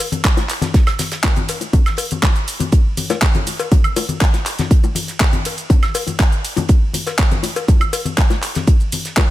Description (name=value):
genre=house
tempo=121 BPM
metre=4/4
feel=straight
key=none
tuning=none
part: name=damped 70s drum kit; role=drums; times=0.0-9.3 s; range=hi-hat, snare drum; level=-32 LUFS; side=right 3 dB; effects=none
part: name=pop drum kit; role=drums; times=0.0-9.3 s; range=handclaps, hi-hat, ride cymbal, shaker, woodblock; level=-22 LUFS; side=right 1 dB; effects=sidechain pumping on hats, sidechain pumping on cymbals, sidechain pumping on perc
part: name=congas, bongos and cowbell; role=percussion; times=0.1-9.3 s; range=none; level=-23 LUFS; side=left 5 dB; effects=sidechain pumping on perc
part: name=electronic kick drum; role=drums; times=0.2-9.3 s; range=none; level=-14 LUFS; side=equal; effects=none
room=studio reverb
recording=none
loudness=-14 LUFS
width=side -15 dB against mid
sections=0.0-9.3 A section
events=none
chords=none